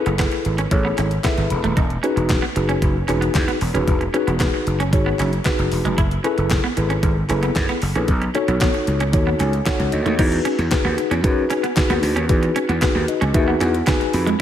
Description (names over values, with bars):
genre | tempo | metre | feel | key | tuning
early-eighties boogie funk | 114 BPM | 4/4 | straight | E major | A4 = 440 Hz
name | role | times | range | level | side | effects
mellow tine electric piano | accompaniment | 0.0-14.4 s | D#4 to B5 | -22 LUFS | left 2 dB | medium stereo tremolo
semi-hollow electric guitar | riff | 0.1-14.3 s | G#3 to E4 | -26 LUFS | right 4 dB | lush chorus
gritty slap bass | bass | 0.1-14.3 s | D#1 to F#2 | -21 LUFS | equal | overdrive
detuned 8-bit digital drum machine | drums | 0.1-14.4 s | crash cymbal, handclaps, hi-hat, kick drum, snare drum | -22 LUFS | equal | overdrive
group handclap | percussion | 0.2-14.0 s | none | -35 LUFS | left 4 dB | none
room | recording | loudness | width
moderate lush hall reverb, RT60 1.8 s, digital ambience | dreamy mix soaked in reverb | -17 LUFS | side -10 dB against mid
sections
0.0-10.2 A section; 10.2-14.4 B section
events
tine electric piano fill 1.0-1.8, 9.1-10.2, 12.8-14.4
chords
0.0 F#m11 (rootless); 1.8 Emaj9; 6.0 F#m11; 8.1 B9; 10.2 Emaj9